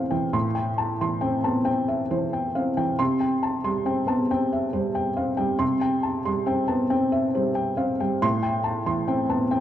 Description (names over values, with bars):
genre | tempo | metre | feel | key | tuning
neoclassical minimalist piano | 46 BPM (dotted quarters) | 6/8 | rubato | unclear | A4 = 443 Hz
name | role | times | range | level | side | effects
felt-muted upright piano | solo | 0.0-9.6 s | A2 to C6 | -22 LUFS | equal | none
room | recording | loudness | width
moderate recital hall reverb, RT60 1.6 s | recorded in a church or concert hall | -22 LUFS | side -11 dB against mid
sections
0.0-9.6 A section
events
none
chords
0.0 Am7; 3.0 C; 8.2 Am7